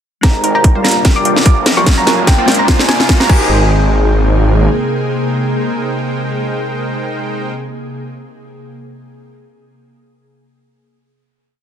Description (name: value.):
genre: future bass.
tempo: 147 BPM.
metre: 4/4.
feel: swing 55% on 16ths, half-time.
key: Ab lydian.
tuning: A4 = 441 Hz.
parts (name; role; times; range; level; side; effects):
thumb-piano-like synth pluck; melody; 0.2-7.8 s; G5 to D6; -17 LUFS; right 1 dB; chorus, sidechain pumping, digital delay.
glassy digital keys; accompaniment; 0.2-9.3 s; Gb3 to Bb4; -24 LUFS; left 3 dB; chorus, sidechain pumping, digital delay.
ethereal airy pad; sustained chords; 0.6-7.5 s; C3 to Ab4; -22 LUFS; equal; ensemble chorus, built-in reverb, vintage 12-bit sampler grit, sidechain pumping.
wide unison pluck; arpeggios; 0.2-3.7 s; F4 to D5; -25 LUFS; left 1 dB; none.
supersaw stab; riff; 0.2-7.5 s; Gb3 to Bb5; -20 LUFS; right 2 dB; sidechain pumping, low-pass filter, digital delay.
wide detuned saw bass; bass; 0.2-4.7 s; Gb1 to Bb1; -16 LUFS; equal; chorus, sidechain pumping, high-pass filter.
electronic kick drum; drums; 0.2-3.4 s; none; -10 LUFS; equal; overdrive.
trap drum kit; drums; 0.2-3.4 s; crash cymbal, hi-hat, snare drum; -15 LUFS; equal; overdrive.
riser; sound effects; 1.3-3.5 s; none; -22 LUFS; equal; none.
room: light reverb.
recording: dense, heavily limited modern master.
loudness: -10 LUFS.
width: side -9 dB against mid.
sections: 0.2-3.5 build; 3.5-6.8 final hit.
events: build-up 0.2-3.5; drum fill 0.2-3.5; filter sweep on supersaw synth 0.2-3.5; riser 1.3-3.5.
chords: 0.2 Abmaj9; 0.8 Gm7; 1.9 Gbmaj7; 2.5 Bb9; 3.3 Abmaj9.